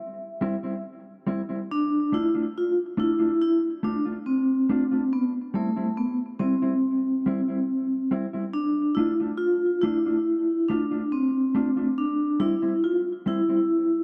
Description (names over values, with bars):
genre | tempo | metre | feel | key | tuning
reggae | 70 BPM | 4/4 | straight | D dorian | A4 = 443 Hz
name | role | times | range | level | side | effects
vibraphone with medium mallets | melody | 0.0-14.0 s | A3 to E5 | -26 LUFS | equal | tape echo
mellow electric guitar | accompaniment | 0.4-13.6 s | G3 to F4 | -32 LUFS | equal | tape echo
room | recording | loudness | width
moderate plate reverb, RT60 2.8 s | none | -25 LUFS | mono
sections
0.0-1.7 A section; 1.7-14.0 B section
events
none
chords
0.0 C; 1.7 Dm; 5.1 C; 8.5 Dm; 12.0 C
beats
0.84 | 1.70 2.55 3.41 4.26 | 5.12 5.98 6.83 7.69 | 8.55 9.40 10.26 11.12 | 11.97 12.83 13.69